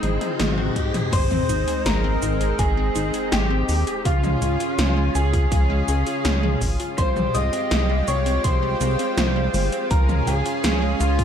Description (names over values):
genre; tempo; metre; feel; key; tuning
synthwave; 82 BPM; 4/4; straight; Ab major; A4 = 439 Hz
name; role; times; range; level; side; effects
lead guitar through a small cranked amp; melody; 0.0-11.2 s; F4 to Eb5; -27 LUFS; equal; overdrive, digital delay
lush unison pad; sustained chords; 0.0-11.2 s; Db3 to Ab4; -27 LUFS; equal; chorus, sidechain pumping
wide unison pluck; arpeggios; 0.0-11.2 s; F3 to Ab4; -30 LUFS; left 1 dB; ping-pong delay
chorused synth bass; bass; 0.0-11.2 s; G1 to Ab2; -23 LUFS; equal; none
80s electronic pad drums; drums; 0.0-11.2 s; cabasa, crash cymbal, hi-hat, snare drum, toms; -26 LUFS; equal; gated reverb on snare and toms, overdrive, studio reverb
riser and sub drop; sound effects; 0.0-4.1 s; none; -31 LUFS; left 1 dB; none
electronic kick drum; drums; 0.8-11.2 s; none; -23 LUFS; equal; studio reverb
soft synth bell; second line; 1.1-11.2 s; F5 to Eb6; -31 LUFS; equal; chorus, ping-pong delay
room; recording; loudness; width
light reverb; dark, warm production; -19 LUFS; side -8 dB against mid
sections
0.0-1.1 A section; 1.1-11.2 B section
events
riser 0.0-1.1; drum fill 0.0-1.1; impact 1.1-4.1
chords
0.0 Ab; 4.1 Db; 7.0 Fmadd9/C; 9.9 Db